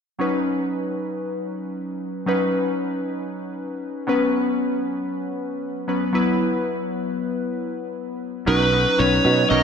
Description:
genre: pop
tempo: 116 BPM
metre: 4/4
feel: straight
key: B major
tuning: A4 = 440 Hz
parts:
  - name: glassy digital keys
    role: accompaniment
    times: 0.2-9.6 s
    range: F#3 to B4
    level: -22 LUFS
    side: left 1 dB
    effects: chorus
  - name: smooth overdriven lead guitar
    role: melody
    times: 8.5-9.6 s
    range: B4 to D#5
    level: -19 LUFS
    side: right 1 dB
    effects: none
  - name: sustaining fretless electric bass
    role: bass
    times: 8.5-9.6 s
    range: B1 to B2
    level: -21 LUFS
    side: right 2 dB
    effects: ensemble chorus
room: wet lush hall reverb, RT60 2.1 s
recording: bright 1980s-style digital production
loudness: -21 LUFS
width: side -6 dB against mid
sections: 0.2-8.5 A section; 8.5-9.6 B section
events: none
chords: 0.2 Badd9; 4.1 F#sus4; 6.1 Esus2; 8.5 Badd9

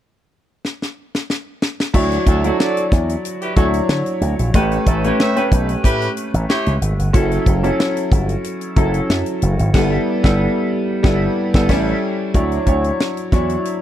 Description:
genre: polished 1980s jazz-funk pop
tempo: 92 BPM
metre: 4/4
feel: swing 54% on 16ths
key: D major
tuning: A4 = 436 Hz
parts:
  - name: tight funk drum kit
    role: drums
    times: 0.6-13.8 s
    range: crash cymbal, hi-hat, kick drum, snare drum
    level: -17 LUFS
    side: equal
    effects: none
  - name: clear baby grand piano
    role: accompaniment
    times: 1.9-13.8 s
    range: F#3 to D5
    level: -19 LUFS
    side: equal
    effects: analog chorus
  - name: slap bass with an envelope filter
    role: bass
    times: 1.9-13.6 s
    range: F#1 to D3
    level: -19 LUFS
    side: equal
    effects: none
  - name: warm horn section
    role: second line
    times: 2.3-6.8 s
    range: C#4 to E5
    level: -23 LUFS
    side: right 1 dB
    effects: none
room: little or no reverb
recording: dry, close 1970s-style studio recording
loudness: -15 LUFS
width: side -11 dB against mid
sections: 0.0-1.9 A section; 1.9-12.3 B section; 12.3-13.8 C section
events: drum fill 0.6-1.9; band accent 9.7-12.3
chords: 0.0 N.C.; 1.9 Dmaj9; 4.5 A9; 7.1 F#m7; 9.7 G69; 11.7 A7; 12.3 Dmaj9

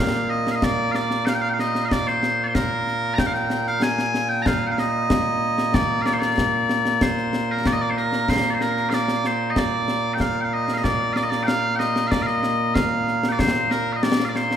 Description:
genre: scottish traditional, Scottish pipe music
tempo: 94 BPM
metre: 4/4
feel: straight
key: Bb major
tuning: A4 = 439 Hz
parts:
  - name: loud bright bagpipes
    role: melody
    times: 0.0-14.6 s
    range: Bb2 to Bb5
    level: -21 LUFS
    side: equal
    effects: none
  - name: concert snare drum and concert bass drum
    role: drums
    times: 0.5-14.6 s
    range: none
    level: -24 LUFS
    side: left 1 dB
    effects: none
room: wet scoring stage reverb, RT60 1.9 s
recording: recorded in a church or concert hall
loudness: -19 LUFS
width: side -9 dB against mid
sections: 0.0-14.6 A section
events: none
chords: none

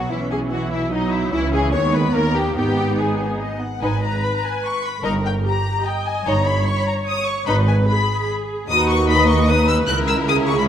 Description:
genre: quick classical-period movement for string orchestra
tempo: 148 BPM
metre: 3/4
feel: straight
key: G# minor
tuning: A4 = 441 Hz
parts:
  - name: warm symphonic violin section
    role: melody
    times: 0.0-10.6 s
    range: D#5 to F#6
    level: -24 LUFS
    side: left 4 dB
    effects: none
  - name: rich symphonic violin section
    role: second line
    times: 0.0-10.7 s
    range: D#4 to C#5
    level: -23 LUFS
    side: left 3 dB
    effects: none
  - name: clear symphonic viola section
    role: accompaniment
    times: 0.0-10.7 s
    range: E3 to D#5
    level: -24 LUFS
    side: right 2 dB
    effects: none
  - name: clear symphonic double bass section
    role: bass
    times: 0.0-10.7 s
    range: G1 to D#2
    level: -24 LUFS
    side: right 2 dB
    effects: none
  - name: warm symphonic cello section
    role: bass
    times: 0.0-10.7 s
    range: C#2 to D#3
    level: -23 LUFS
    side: right 1 dB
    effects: none
room: moderate concert hall reverb, RT60 1.9 s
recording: none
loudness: -17 LUFS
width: side -9 dB against mid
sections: 0.0-3.8 A section; 3.8-10.7 B section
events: none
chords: 0.1 Emaj7sus2/B; 1.3 C#m; 1.7 G#m/D#; 2.1 D#; 2.6 G#m; 5.0 D#/G; 6.3 D#7/G; 7.5 G#m; 8.7 B/D#; 9.9 C#m6

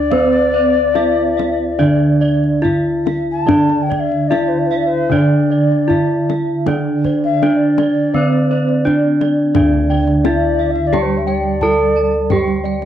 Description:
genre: Javanese gamelan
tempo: 71-87 BPM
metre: 4/4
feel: straight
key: D slendro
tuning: A4 = 440 Hz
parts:
  - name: gamelan-type bronze metallophone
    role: melody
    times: 0.0-12.9 s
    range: C4-40c to A4+20c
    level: -16 LUFS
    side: right 1 dB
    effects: cassette tape
  - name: xiao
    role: second line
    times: 0.0-12.4 s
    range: C5-41c to A5+23c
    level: -20 LUFS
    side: left 5 dB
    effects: cassette tape
  - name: gamelan-type bronze metallophone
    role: accompaniment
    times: 0.0-12.9 s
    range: D3 to D4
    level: -24 LUFS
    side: right 7 dB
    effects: cassette tape
  - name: gamelan-type bronze metallophone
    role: arpeggios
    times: 0.0-12.9 s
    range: C5-40c to A5+20c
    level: -24 LUFS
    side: right 6 dB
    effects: cassette tape
  - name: gamelan-type bossed gongs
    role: bass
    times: 0.0-12.9 s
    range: D2 to C5-40c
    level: -19 LUFS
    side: equal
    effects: none
  - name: gamelan-type bossed gongs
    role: arpeggios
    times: 0.1-12.9 s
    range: C5-40c to A5+20c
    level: -28 LUFS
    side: left 4 dB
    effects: cassette tape
  - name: kendang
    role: percussion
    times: 0.1-12.9 s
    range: none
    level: -22 LUFS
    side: left 6 dB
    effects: none
room: moderate studio reverb, RT60 0.6 s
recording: home recording on cassette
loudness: -13 LUFS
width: side -10 dB against mid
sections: 0.0-9.6 A section; 9.6-12.9 B section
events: none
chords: none

